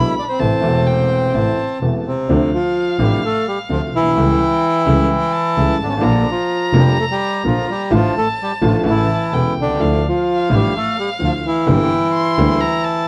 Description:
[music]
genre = tango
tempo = 128 BPM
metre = 4/4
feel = rubato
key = D minor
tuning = A4 = 443 Hz
[part]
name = bandoneon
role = melody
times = 0.0-13.1 s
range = C3 to E5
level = -20 LUFS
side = equal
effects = none
[part]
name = dark violin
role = second line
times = 0.0-13.1 s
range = F5 to C6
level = -27 LUFS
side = equal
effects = none
[part]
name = bright baby grand piano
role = accompaniment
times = 0.0-12.6 s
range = E1 to G4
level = -22 LUFS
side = equal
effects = none
[part]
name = dark double bass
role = bass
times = 0.0-12.6 s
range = E1 to D2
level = -21 LUFS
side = equal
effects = none
[sound]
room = light reverb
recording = worn, warbling old tape, cassette tape, warbly pitch drift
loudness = -17 LUFS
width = mono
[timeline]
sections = 0.0-2.3 A section; 2.3-13.1 B section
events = none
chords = 0.4 Am; 2.3 Dm7; 4.2 A7/C#; 6.0 Bb; 7.9 Dm/A; 8.8 A; 9.8 Dmadd9; 11.7 Gm

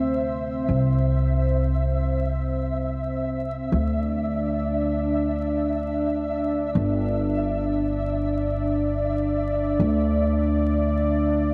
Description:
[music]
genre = trip hop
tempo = free time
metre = none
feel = none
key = unclear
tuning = A4 = 441 Hz
[part]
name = dark analog pad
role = sustained chords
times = 0.0-11.5 s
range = C4 to D5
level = -28 LUFS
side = equal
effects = chorus, cassette tape
[part]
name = upright bass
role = bass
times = 0.0-11.5 s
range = G1 to D2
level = -26 LUFS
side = equal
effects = none
[part]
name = flickering grainy texture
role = texture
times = 0.0-11.5 s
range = E5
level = -35 LUFS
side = equal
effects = built-in reverb, cassette tape
[sound]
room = moderate spring reverb, RT60 1.3 s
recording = home recording on cassette, vinyl crackle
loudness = -24 LUFS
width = mono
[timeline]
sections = 0.0-11.5 A section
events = none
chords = 0.0 Dsus2; 0.7 C; 3.7 Dsus2; 6.8 G5; 9.8 Dsus2

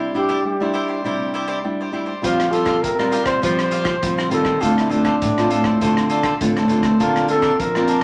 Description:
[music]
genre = samba and choro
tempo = 101 BPM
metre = 4/4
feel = straight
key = F major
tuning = A4 = 440 Hz
[part]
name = breathy flugelhorn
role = second line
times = 0.0-8.0 s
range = D4 to C5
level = -23 LUFS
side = equal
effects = none
[part]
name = cavaquinho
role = accompaniment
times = 0.0-8.0 s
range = D4 to F5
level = -27 LUFS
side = equal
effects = none
[part]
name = nylon-string guitar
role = accompaniment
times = 0.0-8.0 s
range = A2 to F4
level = -23 LUFS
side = equal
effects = none
[part]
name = nylon-string guitar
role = bass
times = 2.2-8.0 s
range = A2 to F3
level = -27 LUFS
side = equal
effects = none
[part]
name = vintage drum kit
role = drums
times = 2.2-8.0 s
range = hi-hat, kick drum, rim click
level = -29 LUFS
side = equal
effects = none
[sound]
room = wet large studio reverb, RT60 0.8 s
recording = none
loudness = -19 LUFS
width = mono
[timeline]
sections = 0.0-8.0 A section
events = flugelhorn solo 0.0-8.0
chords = 0.0 Cadd9; 2.2 Fsus2; 4.6 Dm7; 7.0 Bbadd9/D

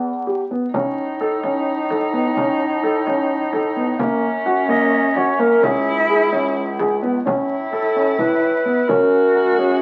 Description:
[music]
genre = contemporary instrumental, chamber music in an uneven meter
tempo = 258 BPM (eighths)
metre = 7/8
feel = straight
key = unclear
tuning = A4 = 440 Hz
[part]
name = dark grand piano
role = arpeggios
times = 0.0-9.7 s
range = A#3 to A#4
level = -23 LUFS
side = equal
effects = none
[part]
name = breathy bass clarinet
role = bass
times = 0.0-9.8 s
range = C#2 to A2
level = -28 LUFS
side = equal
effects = none
[part]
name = warm cello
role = second line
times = 0.7-9.8 s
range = C#4 to F#4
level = -24 LUFS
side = equal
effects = none
[part]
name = frame drum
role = percussion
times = 0.7-9.1 s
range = none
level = -30 LUFS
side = equal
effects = none
[part]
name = dark clarinet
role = melody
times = 4.7-9.8 s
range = G#4 to D#5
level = -21 LUFS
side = equal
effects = none
[sound]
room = moderate studio reverb, RT60 0.8 s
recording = very old 78 rpm record, vinyl crackle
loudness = -19 LUFS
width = mono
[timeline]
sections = 0.0-7.3 A section; 7.3-9.8 B section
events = none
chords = 0.0 Em; 0.7 A; 4.0 F#; 5.6 C#m; 7.3 A; 8.9 F#

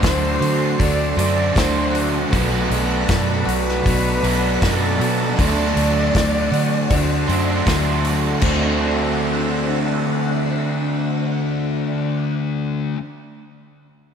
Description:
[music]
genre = rock, shoegaze and dream pop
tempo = 79 BPM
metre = 4/4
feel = straight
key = D mixolydian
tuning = A4 = 440 Hz
[part]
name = concert flute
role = melody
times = 0.0-7.7 s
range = A4 to D5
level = -25 LUFS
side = equal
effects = analog delay
[part]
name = phased string machine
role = sustained chords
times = 0.0-12.2 s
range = D3 to C6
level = -28 LUFS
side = equal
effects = ensemble chorus, phaser
[part]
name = picked twelve-string acoustic guitar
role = arpeggios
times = 0.0-13.0 s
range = F#3 to F#4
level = -29 LUFS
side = right 2 dB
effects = lush chorus, analog delay
[part]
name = overdriven electric guitar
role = riff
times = 0.0-13.0 s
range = B2 to D4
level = -25 LUFS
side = left 1 dB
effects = none
[part]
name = overdriven semi-hollow guitar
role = riff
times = 0.0-13.0 s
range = B2 to C5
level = -24 LUFS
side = right 8 dB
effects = reverse reverb
[part]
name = thick fuzz guitar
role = riff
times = 0.0-13.0 s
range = B2 to D4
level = -26 LUFS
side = left 9 dB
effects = distortion, wide subtle chorus
[part]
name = vintage muted fingered electric bass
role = bass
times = 0.0-12.9 s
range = B1 to D3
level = -23 LUFS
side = equal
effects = none
[part]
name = loose indie drum kit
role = drums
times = 0.0-8.6 s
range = crash cymbal, hi-hat, kick drum, snare drum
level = -23 LUFS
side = equal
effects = none
[sound]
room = moderate lush hall reverb, RT60 3.0 s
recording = dreamy mix soaked in reverb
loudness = -17 LUFS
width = side -7 dB against mid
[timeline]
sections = 0.0-8.4 A section; 8.4-11.5 B section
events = none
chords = 0.0 D7; 2.3 Bm7; 5.4 D7

